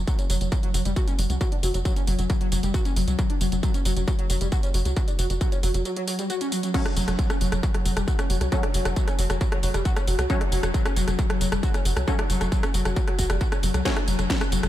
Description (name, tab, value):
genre	driving peak-time techno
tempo	135 BPM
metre	4/4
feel	straight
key	F# phrygian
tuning	A4 = 440 Hz
part	tight sequencer bass	bass	0.0-14.7 s	F#1 to C#2	-25 LUFS	equal	sidechain pumping
part	overdriven synth lead	riff	0.1-14.7 s	F#3 to F#4	-29 LUFS	left 2 dB	distortion, lush chorus, sidechain pumping, ping-pong delay
part	electronic kick drum	drums	0.1-14.4 s	none	-24 LUFS	equal	distortion, overdrive, studio reverb
part	techno drum kit	drums	0.1-14.7 s	crash cymbal, hi-hat, rim click, snare drum, tambourine	-30 LUFS	equal	overdrive, studio reverb
part	rave stab	stabs	6.7-13.9 s	F#3 to C#4	-34 LUFS	left 1 dB	chorus, built-in reverb, sidechain pumping, diffuse ambient delay
room	little or no reverb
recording	none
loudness	-22 LUFS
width	side -13 dB against mid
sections	0.0-14.7 A section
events	break 5.9-6.7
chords	0.0 F#5